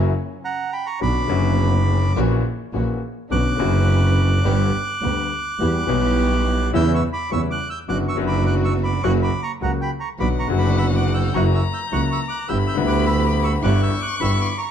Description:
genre	tango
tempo	105 BPM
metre	4/4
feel	rubato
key	B harmonic minor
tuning	A4 = 440 Hz
part	warm violin	second line	0.0-0.4, 10.2-14.7 s	C#4 to C#6	-28 LUFS	left 6 dB	none
part	bright concert grand piano	accompaniment	0.0-14.4 s	F#1 to G4	-23 LUFS	left 5 dB	none
part	warm studio string section	stabs	0.0-14.4 s	A#3 to B4	-29 LUFS	right 4 dB	none
part	clear double bass	bass	0.0-14.4 s	F#1 to E2	-20 LUFS	right 2 dB	none
part	bandoneon	melody	0.4-14.7 s	F#5 to G6	-26 LUFS	right 3 dB	none
room	moderate large studio reverb, RT60 1.2 s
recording	dark, warm production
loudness	-18 LUFS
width	side -8 dB against mid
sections	0.0-1.0 A section; 1.0-14.7 B section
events	none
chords	0.0 F#7; 1.0 Bmadd9; 2.2 F#7/A#; 3.3 Bmadd9; 4.4 G; 5.6 Em; 6.7 C#m7b5/E; 7.9 Bm/F#; 9.0 F#; 10.2 Bm; 11.3 F#7; 12.5 G6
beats	0.43 | 1.00 1.58 2.15 2.73 | 3.30 3.88 4.45 5.02 | 5.59 6.17 6.74 7.31 | 7.89 8.46 9.04 9.61 | 10.19 10.77 11.34 11.91 | 12.49 13.06 13.63 14.20

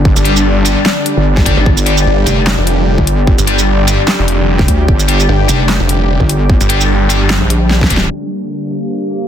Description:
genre	heavy wobble dubstep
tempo	149 BPM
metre	4/4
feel	swing 55% on 16ths, half-time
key	G minor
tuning	A4 = 440 Hz
part	lush unison pad	sustained chords	0.0-9.3 s	D3 to G4	-19 LUFS	equal	chorus, sidechain pumping
part	wobble bass	bass	0.0-8.1 s	F1 to D2	-13 LUFS	equal	chorus, overdrive
part	warbly tape-like pad	texture	0.0-9.3 s	D4 to Bb5	-20 LUFS	left 3 dB	chorus, built-in reverb, sidechain pumping
part	electronic kick drum	drums	0.1-8.0 s	none	-12 LUFS	equal	studio reverb
part	heavy high-gain guitar	stabs	0.2-8.0 s	G3 to G4	-20 LUFS	left 4 dB	distortion, digital delay
part	snarling distorted saw bass	bass	0.2-7.4 s	F1 to Ab1	-13 LUFS	equal	distortion, overdrive
part	dubstep drum kit	drums	0.2-9.2 s	crash cymbal, handclaps, hi-hat, shaker, snare drum	-17 LUFS	equal	overdrive, low-pass filter on cymbals, studio reverb, low-pass filter on hats, low-pass filter on perc, low-pass filter on snare
room	little or no reverb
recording	dense, heavily limited modern master, low-pass filter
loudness	-9 LUFS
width	side -10 dB against mid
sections	0.0-8.1 A section; 8.1-9.3 B section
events	drop 0.0-8.1; drum fill 7.7-8.1; band accent 8.0; filter sweep on drum 8.1-9.3; filter sweep 8.1-9.3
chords	0.0 G5; 8.1 Gm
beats	| 0.05 0.46 0.86 1.26 | 1.66 2.07 2.47 2.87 | 3.27 3.68 4.08 4.48 | 4.88 5.29 5.69 6.09 | 6.50 6.90 7.30 7.70 | 8.11 8.51 8.91

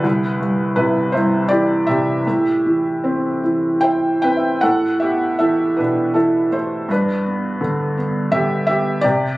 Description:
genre	classical, lyrical solo piano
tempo	72-85 BPM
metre	3/4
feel	rubato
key	G major from 4.6 s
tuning	A4 = 441 Hz
part	felt-muted upright piano	solo	0.0-9.4 s	C2 to G5	-16 LUFS	equal	none
room	light reverb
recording	recorded on a phone in the room, club ambience, compression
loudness	-16 LUFS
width	side -19 dB against mid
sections	0.0-4.6 A section; 4.6-9.4 B section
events	felt piano fill 3.4-4.6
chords	0.0 C; 2.3 Am7; 4.6 Asus2; 6.9 G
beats	| 0.05 0.77 1.50 | 2.25 3.02 3.82 | 4.62 5.38 6.15 | 6.89 7.62 8.33 | 9.04

